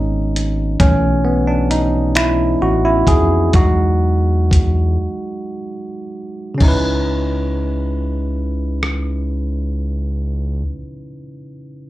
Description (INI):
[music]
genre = slow six-eight R&B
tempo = 36-45 BPM (dotted quarters)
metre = 6/8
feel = straight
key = C# minor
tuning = A4 = 441 Hz
[part]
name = barky tine electric piano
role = accompaniment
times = 0.0-11.9 s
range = C#3 to B4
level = -19 LUFS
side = right 1 dB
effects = plate reverb, slapback echo
[part]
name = round analog bass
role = bass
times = 0.0-10.6 s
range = G#1 to E#2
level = -18 LUFS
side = equal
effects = none
[part]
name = dusty soul sampler-style drum kit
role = drums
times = 0.4-9.1 s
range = crash cymbal, finger snaps, hi-hat, kick drum, rim click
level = -16 LUFS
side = equal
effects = none
[sound]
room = light reverb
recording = live gig heard through the venue's PA, club reverb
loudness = -14 LUFS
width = side -16 dB against mid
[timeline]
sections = 0.0-6.6 A section; 6.6-9.9 B section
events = tine electric piano solo 0.0-6.6; slowing down 0.8-6.6; break 5.0-6.6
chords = 0.0 Amaj9 (rootless); 0.8 B7sus4; 3.5 Emaj9; 6.6 C#m9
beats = | 0.80 2.14 | 3.54 5.01 | 6.61 8.27